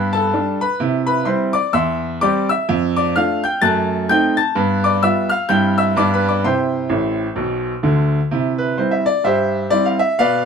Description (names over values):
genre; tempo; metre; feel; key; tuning
jazz, stride piano; 128 BPM; 4/4; swing 59% on 8ths; C major; A4 = 438 Hz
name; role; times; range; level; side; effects
bright baby grand piano; solo; 0.0-10.5 s; A1 to A6; -15 LUFS; equal; none
room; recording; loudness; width
moderate club reverb, RT60 0.5 s; dark, warm production; -15 LUFS; side -6 dB against mid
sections
0.0-8.3 A section; 8.3-10.5 A section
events
grand piano fill 6.9-8.3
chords
0.0 G; 0.8 C; 1.7 C/E; 2.7 Dm/F; 3.6 F#dim7; 4.6 G7; 5.5 C/G; 6.0 G; 6.4 C